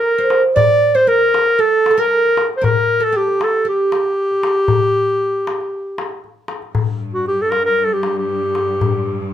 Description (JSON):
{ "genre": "Arabic maqam ensemble", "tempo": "116 BPM", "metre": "4/4", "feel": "straight", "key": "G minor", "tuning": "A4 = 440 Hz", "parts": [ { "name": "mellow clarinet", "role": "melody", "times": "0.0-9.3 s", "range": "F#4 to D5", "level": "-15 LUFS", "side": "equal", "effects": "none" }, { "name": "oud", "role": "second line", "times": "0.0-6.2 s", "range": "G4 to D5", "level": "-20 LUFS", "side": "right 5 dB", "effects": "none" }, { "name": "darbuka", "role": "percussion", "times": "0.2-9.0 s", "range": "none", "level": "-22 LUFS", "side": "left 5 dB", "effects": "none" }, { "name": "clear symphonic cello section", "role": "drone", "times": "6.7-9.3 s", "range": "G2", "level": "-27 LUFS", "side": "equal", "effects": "none" } ], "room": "moderate studio reverb, RT60 0.6 s", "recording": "none", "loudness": "-14 LUFS", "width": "side -10 dB against mid", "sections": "0.0-6.8 A section; 6.8-9.3 B section", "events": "none", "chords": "none" }